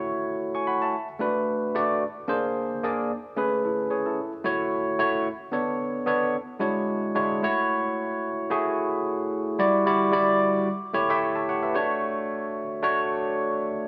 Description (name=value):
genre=pop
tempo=111 BPM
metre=4/4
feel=swing 54% on 16ths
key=unclear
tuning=A4 = 442 Hz
part: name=barky tine electric piano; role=solo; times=0.0-13.9 s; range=G3 to C#6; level=-26 LUFS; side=equal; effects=subtle chorus
room=light reverb, digital ambience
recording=small room ambience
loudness=-26 LUFS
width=mono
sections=0.0-7.4 A section; 7.4-13.9 B section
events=none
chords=0.0 F#m7; 0.9 Bm7; 2.0 Bb9; 3.1 Amaj9; 4.2 F#m7; 5.3 Bm9; 6.3 E13; 7.4 F#m7; 9.6 Em9; 10.7 A7; 11.8 Dmaj7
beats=0.40 | 0.94 1.48 2.02 2.56 | 3.10 3.65 4.19 4.73 | 5.27 5.81 6.35 6.89 | 7.43 7.97 8.51 9.05 | 9.59 10.13 10.67 11.21 | 11.76 12.29 12.84 13.38